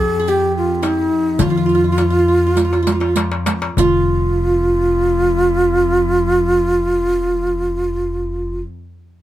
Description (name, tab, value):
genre	Arabic maqam ensemble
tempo	96-109 BPM (eighths)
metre	10/8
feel	straight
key	unclear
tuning	A4 = 439 Hz
part	breathy mellow ney	melody	0.0-8.6 s	Eb4+50c to Ab4+48c	-16 LUFS	equal	none
part	qanun	second line	0.0-8.6 s	E4-50c to Bb4	-21 LUFS	right 3 dB	none
part	warm studio cello section	drone	0.0-8.6 s	F2	-26 LUFS	right 1 dB	none
part	darbuka	percussion	0.3-4.4 s	none	-22 LUFS	left 6 dB	none
part	riq	percussion	0.3-4.4 s	none	-23 LUFS	right 5 dB	none
part	upright bass	bass	1.4-8.6 s	F1 to F2	-21 LUFS	equal	none
room	light reverb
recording	none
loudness	-14 LUFS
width	side -13 dB against mid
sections	0.0-3.8 A section; 3.8-9.2 B section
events	slowing down 0.0-3.8; drum fill 2.6-3.8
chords	none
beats	0.28 0.83 1.40 1.98 2.57 3.17 | 3.79 4.41 5.03 5.66 6.28 6.91 7.53 8.16